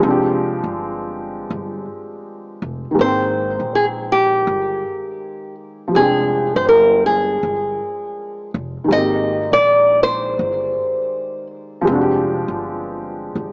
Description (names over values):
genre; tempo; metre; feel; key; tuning
lo-fi hip hop; 81 BPM; 4/4; swing 65% on 16ths; F dorian; A4 = 437 Hz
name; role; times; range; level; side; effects
felt-muted upright piano; accompaniment; 0.0-13.5 s; Eb3 to G5; -21 LUFS; equal; cassette tape
upright bass; bass; 0.0-13.5 s; F1 to Bb1; -27 LUFS; equal; none
nylon-string guitar; melody; 3.0-11.5 s; G4 to Eb5; -16 LUFS; equal; none
room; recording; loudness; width
wet spring reverb, RT60 2.7 s; worn, warbling old tape, cassette tape, warbly pitch drift, small speaker sound; -15 LUFS; side -32 dB against mid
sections
0.0-13.5 A section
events
none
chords
0.0 Fm69; 3.0 Abmaj9; 5.9 Fm69; 8.9 Abmaj9; 11.9 Fm69